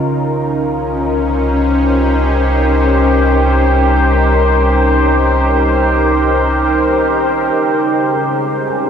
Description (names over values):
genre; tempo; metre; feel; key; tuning
ambient; free time; none; none; unclear; A4 = 440 Hz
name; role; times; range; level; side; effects
evolving wavetable pad; sustained chords; 0.0-8.9 s; Db3 to C5; -13 LUFS; equal; chorus, built-in reverb
round analog bass; bass; 0.1-7.5 s; C2; -16 LUFS; equal; none
bowed-like drone; drone; 0.6-7.7 s; Db4; -20 LUFS; left 4 dB; built-in reverb
felt-muted upright piano; arpeggios; 8.1-8.9 s; Db4 to Ab5; -30 LUFS; equal; none
room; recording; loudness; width
wet huge ambient reverb, RT60 7.9 s; dreamy mix soaked in reverb, cassette tape; -11 LUFS; side -8 dB against mid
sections
0.0-7.5 A section; 7.5-8.9 B section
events
none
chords
0.1 Cm7; 7.5 Db